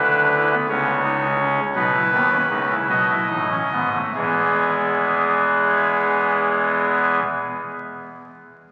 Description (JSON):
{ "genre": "classical, baroque-style 3-part fugue for pipe organ", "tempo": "45-60 BPM (dotted quarters)", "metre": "6/8", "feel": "straight", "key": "E major", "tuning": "A4 = 441 Hz", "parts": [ { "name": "pipe organ, soft reed", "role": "solo", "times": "0.0-7.2 s", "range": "E1 to D#5", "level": "-20 LUFS", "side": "equal", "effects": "none" } ], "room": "wet church reverb, RT60 3.5 s", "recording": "very old 78 rpm record, vinyl crackle", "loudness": "-20 LUFS", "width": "mono", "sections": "0.0-4.1 A section; 4.1-8.7 B section", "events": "slowing down 0.0-4.1", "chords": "0.0 E5/D; 0.7 C#sus2; 1.7 E5/B; 2.9 B7; 4.1 E", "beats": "0.69 | 1.75 2.89 | 4.14 5.45 | 6.76" }